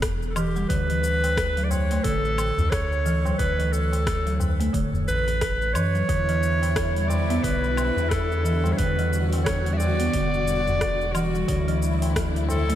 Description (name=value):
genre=organic downtempo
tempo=89 BPM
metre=4/4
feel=swing 59% on 16ths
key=E dorian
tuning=A4 = 441 Hz
part: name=round analog bass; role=bass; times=0.0-12.8 s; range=D1 to F#2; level=-26 LUFS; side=equal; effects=sidechain pumping
part: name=deep house drum kit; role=drums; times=0.0-12.8 s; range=cabasa, hi-hat, rim click, woodblock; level=-34 LUFS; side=left 1 dB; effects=overdrive
part: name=electronic kick drum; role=drums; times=0.0-12.3 s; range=none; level=-29 LUFS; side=equal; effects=overdrive
part: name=warm clarinet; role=melody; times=0.3-12.8 s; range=F#4 to E5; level=-26 LUFS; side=equal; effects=tape echo
part: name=folk marimba with soft mallets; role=arpeggios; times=0.4-12.8 s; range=D3 to B3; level=-28 LUFS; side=right 1 dB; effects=tape echo
part: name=tabla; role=percussion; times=0.9-12.8 s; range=none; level=-34 LUFS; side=left 1 dB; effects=none
part: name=dark studio string section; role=sustained chords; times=6.1-12.8 s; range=D3 to F#4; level=-31 LUFS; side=left 2 dB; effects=sidechain pumping
room=moderate lush hall reverb, RT60 3.0 s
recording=dreamy mix soaked in reverb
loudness=-21 LUFS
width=side -11 dB against mid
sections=0.0-12.8 A section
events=none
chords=0.0 Em; 0.7 D; 6.1 Em7; 11.5 Dadd9